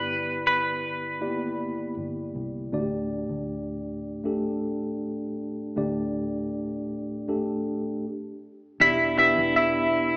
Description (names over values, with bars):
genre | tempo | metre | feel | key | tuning
pop ballad | 79 BPM | 4/4 | straight | unclear | A4 = 440 Hz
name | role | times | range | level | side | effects
twelve-string electric guitar | melody | 0.0-1.9, 8.8-10.2 s | E4 to E5 | -22 LUFS | equal | none
mellow tine electric piano | accompaniment | 0.0-10.2 s | G2 to D5 | -28 LUFS | equal | medium stereo tremolo
vintage muted fingered electric bass | bass | 0.0-10.2 s | G1 to E2 | -39 LUFS | equal | none
room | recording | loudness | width
wet recital hall reverb, RT60 1.7 s | recorded in a church or concert hall, small speaker sound | -24 LUFS | side -23 dB against mid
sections
0.0-8.8 A section; 8.8-10.2 B section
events
stop 8.0-8.8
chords
0.0 G6; 2.7 Dsus4; 8.8 Em7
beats
0.45 1.21 1.97 | 2.73 3.49 4.25 5.01 | 5.77 6.53 7.29 8.04 | 8.80 9.56